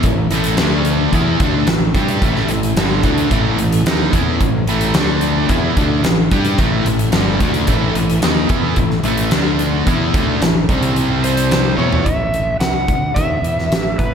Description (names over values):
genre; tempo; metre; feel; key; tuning
classic rock; 110 BPM; 4/4; straight; A mixolydian; A4 = 441 Hz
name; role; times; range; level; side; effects
string machine, full ensemble; sustained chords; 0.0-11.8 s; C4 to E5; -28 LUFS; right 1 dB; none
distorted electric guitar; riff; 0.0-12.1 s; G2 to G4; -20 LUFS; right 10 dB; overdrive
sludgy distorted guitar; riff; 0.0-12.1 s; G2 to G4; -19 LUFS; left 8 dB; overdrive
fuzz fingered electric bass; bass; 0.0-14.1 s; G1 to G2; -21 LUFS; equal; overdrive
huge arena drum kit; drums; 0.0-14.1 s; hi-hat, kick drum, snare drum, toms; -18 LUFS; equal; none
overdriven slide guitar; melody; 11.2-14.1 s; B4 to F#5; -20 LUFS; right 1 dB; none
room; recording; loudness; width
moderate lush hall reverb, RT60 1.8 s, studio reverb; big arena sound; -13 LUFS; side -7 dB against mid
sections
0.0-12.1 A section; 12.1-14.1 B section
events
drum fill 11.8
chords
0.0 A; 0.6 D5; 1.1 A; 4.9 D5; 5.5 A; 9.3 D5; 9.9 A; 10.7 C5; 11.8 C#m7/E; 12.1 A5